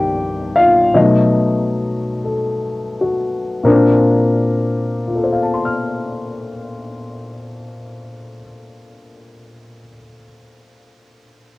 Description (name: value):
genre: solo jazz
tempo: 41-53 BPM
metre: 4/4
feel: swing 68% on 8ths, rubato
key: Bb major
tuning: A4 = 440 Hz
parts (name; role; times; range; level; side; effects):
- dark baby grand piano; solo; 0.0-11.6 s; C2 to F6; -15 LUFS; left 1 dB; cassette tape
room: moderate booth ambience, RT60 0.2 s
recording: home recording on cassette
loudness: -14 LUFS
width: side -19 dB against mid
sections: 0.0-3.6 A section; 3.6-9.3 B section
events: slowing down 0.0-3.6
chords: 0.0 Cm11; 1.0 B7; 3.6 Bbmaj9